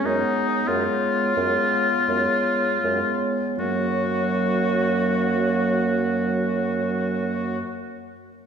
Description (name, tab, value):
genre	classical, slow romantic movement for wind quintet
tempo	38-47 BPM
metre	4/4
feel	rubato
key	F# major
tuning	A4 = 440 Hz
part	hollow concert flute	melody	0.0-7.6 s	C#5	-29 LUFS	left 3 dB	none
part	clear oboe	second line	0.0-7.6 s	D#4 to F#4	-25 LUFS	left 2 dB	none
part	clear clarinet	accompaniment	0.0-7.6 s	A#3 to B3	-28 LUFS	right 4 dB	none
part	mellow French horn	accompaniment	0.0-7.6 s	F#3 to G#3	-29 LUFS	equal	none
part	mellow bassoon	bass	0.0-7.6 s	F#2	-28 LUFS	right 3 dB	none
room	wet concert hall reverb, RT60 2.3 s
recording	recorded in a church or concert hall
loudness	-20 LUFS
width	side -7 dB against mid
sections	0.0-3.6 A section; 3.6-8.5 B section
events	slowing down 0.0-3.6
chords	0.0 C#7/F#; 3.6 F#